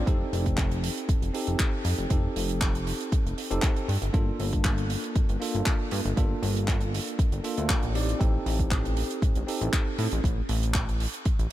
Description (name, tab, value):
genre	nu-disco, nu disco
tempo	118 BPM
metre	4/4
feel	swing 53% on 16ths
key	G minor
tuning	A4 = 443 Hz
part	bell-like tine electric piano	accompaniment	0.0-10.2 s	Bb3 to D5	-32 LUFS	equal	fast stereo tremolo, analog delay
part	chorused synth bass	bass	0.0-11.5 s	F1 to A2	-28 LUFS	equal	none
part	compact cocktail drum kit	drums	0.1-11.5 s	handclaps, hi-hat	-33 LUFS	right 1 dB	none
part	electronic kick drum	drums	0.1-11.4 s	none	-25 LUFS	equal	none
room	small room ambience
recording	none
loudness	-24 LUFS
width	side -14 dB against mid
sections	0.0-11.5 A section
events	none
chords	0.1 F9; 3.9 Gm9; 8.0 Am7b5